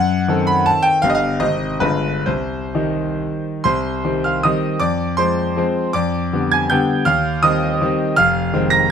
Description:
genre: classical, romantic triple-time dance for piano with dotted rhythms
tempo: 122-171 BPM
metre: 3/4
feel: rubato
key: C minor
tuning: A4 = 440 Hz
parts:
  - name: bright grand piano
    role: solo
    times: 0.0-8.9 s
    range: F1 to Bb6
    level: -15 LUFS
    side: equal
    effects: none
room: light reverb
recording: none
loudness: -16 LUFS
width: side -7 dB against mid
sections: 0.0-3.6 A section; 3.6-8.9 B section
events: none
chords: 0.0 F#dim7; 1.0 G7; 1.4 Ab; 1.8 G7b9; 2.3 Cm; 4.8 Fm; 5.9 G7/F; 7.1 Cm/Eb; 8.2 Fm7

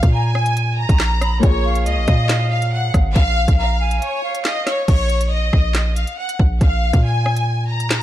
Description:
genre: hip hop, drill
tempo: 139 BPM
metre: 4/4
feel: half-time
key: Bb minor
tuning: A4 = 440 Hz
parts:
  - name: bright studio violin section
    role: melody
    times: 0.0-8.0 s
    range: Db5 to Bb5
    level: -22 LUFS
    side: left 2 dB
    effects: none
  - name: warm baby grand piano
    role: accompaniment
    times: 0.0-4.9 s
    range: Bb3 to Db5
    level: -26 LUFS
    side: left 4 dB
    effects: none
  - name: hard-hitting 808-style bass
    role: bass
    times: 0.0-8.0 s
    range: Ab1 to Bb2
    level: -18 LUFS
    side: equal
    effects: none
  - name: drill drum kit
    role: drums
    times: 0.0-8.0 s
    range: crash cymbal, handclaps, hi-hat, kick drum, rim click, snare drum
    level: -17 LUFS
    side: equal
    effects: none
  - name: hollow jazz flute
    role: second line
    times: 0.1-4.8 s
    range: F5 to Cb6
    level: -27 LUFS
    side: right 6 dB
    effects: tape echo
room: small room reverb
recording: dark, warm production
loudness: -15 LUFS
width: side -13 dB against mid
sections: 0.0-4.9 A section; 4.9-8.0 B section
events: break 4.0-4.9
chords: 0.0 Bbm7; 4.9 N.C.

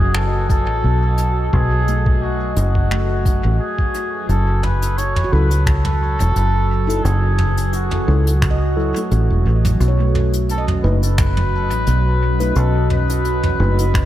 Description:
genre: ambient dub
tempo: 87 BPM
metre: 4/4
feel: swing 54% on 16ths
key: F# dorian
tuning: A4 = 440 Hz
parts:
  - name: trumpet with cup mute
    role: melody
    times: 0.0-14.1 s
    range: F#4 to C#5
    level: -24 LUFS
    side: equal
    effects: dub echo
  - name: deep dark ambient pad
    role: sustained chords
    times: 0.0-14.1 s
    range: F#3 to D#5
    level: -25 LUFS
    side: equal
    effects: chorus, built-in reverb, vintage 12-bit sampler grit
  - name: handpan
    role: arpeggios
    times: 0.0-13.3 s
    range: A3 to D#5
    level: -32 LUFS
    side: right 5 dB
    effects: dub echo
  - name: fingered electric bass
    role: bass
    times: 0.0-14.1 s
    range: E1 to C#2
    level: -17 LUFS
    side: equal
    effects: none
  - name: bubbling stepped-filter texture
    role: texture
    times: 0.0-4.3 s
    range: F#3 to F#4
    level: -33 LUFS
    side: left 1 dB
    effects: none
  - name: soft brush drum kit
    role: drums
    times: 0.1-14.1 s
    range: finger snaps, hi-hat, toms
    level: -26 LUFS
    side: equal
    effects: dub echo
  - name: electronic kick drum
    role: drums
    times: 0.5-14.1 s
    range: none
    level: -18 LUFS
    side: equal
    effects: none
  - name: mellow tine electric piano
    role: stabs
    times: 5.3-13.8 s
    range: F#3 to B4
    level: -28 LUFS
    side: left 2 dB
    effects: medium stereo tremolo, dub echo
room: light reverb, studio reverb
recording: none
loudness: -15 LUFS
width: side -13 dB against mid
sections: 0.0-4.3 A section; 4.3-14.1 B section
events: none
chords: 0.0 B7; 4.3 F#m7; 9.8 B7

